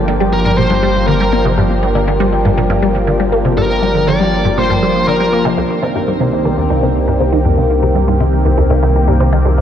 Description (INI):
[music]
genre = ambient, sequencer-driven space music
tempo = 120 BPM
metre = 4/4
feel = straight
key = G minor, C minor from 5.6 s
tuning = A4 = 439 Hz
[part]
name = lush unison pad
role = sustained chords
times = 0.0-9.6 s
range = Eb3 to G4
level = -16 LUFS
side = equal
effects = chorus, phaser, shimmer reverb
[part]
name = resonant blip pluck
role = riff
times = 0.0-9.6 s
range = C2 to Bb3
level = -16 LUFS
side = equal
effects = phaser, analog chorus, tape echo
[part]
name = warm sub bass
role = bass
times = 0.0-9.6 s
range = G1 to C2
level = -17 LUFS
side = equal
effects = none
[part]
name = bluesy overdriven lead guitar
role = melody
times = 0.3-5.4 s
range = Bb4 to D5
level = -19 LUFS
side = left 1 dB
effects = distortion, shimmer reverb, tape echo
[sound]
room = wet plate reverb, RT60 3.5 s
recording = worn, warbling old tape, cassette tape, warbly pitch drift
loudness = -11 LUFS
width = side -9 dB against mid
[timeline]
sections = 0.0-5.6 A section; 5.6-9.6 B section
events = none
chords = 0.0 Gm7; 5.6 Cm7